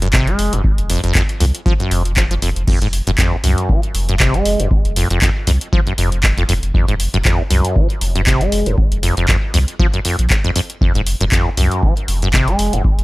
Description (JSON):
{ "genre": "acid house", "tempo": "118 BPM", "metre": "4/4", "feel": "swing 56% on 16ths", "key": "F phrygian", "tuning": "A4 = 440 Hz", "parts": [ { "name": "acid bass, saw", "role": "riff", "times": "0.0-12.8 s", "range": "Eb2 to Ab3", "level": "-18 LUFS", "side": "equal", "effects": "tube saturation, wide subtle chorus, sidechain pumping, tape echo" }, { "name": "saturated sub bass", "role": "bass", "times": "0.0-13.0 s", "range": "F1 to C2", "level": "-18 LUFS", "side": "equal", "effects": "sidechain pumping" }, { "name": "punchy analog drum machine", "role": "drums", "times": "0.0-13.0 s", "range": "crash cymbal, handclaps, hi-hat", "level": "-21 LUFS", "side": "equal", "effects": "none" }, { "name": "electronic kick drum", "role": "drums", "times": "0.1-13.0 s", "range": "none", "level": "-16 LUFS", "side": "equal", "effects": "none" } ], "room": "little or no reverb", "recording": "dry, gritty hardware recording", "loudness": "-13 LUFS", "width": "side -20 dB against mid", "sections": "0.0-13.0 A section", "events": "none", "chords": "none" }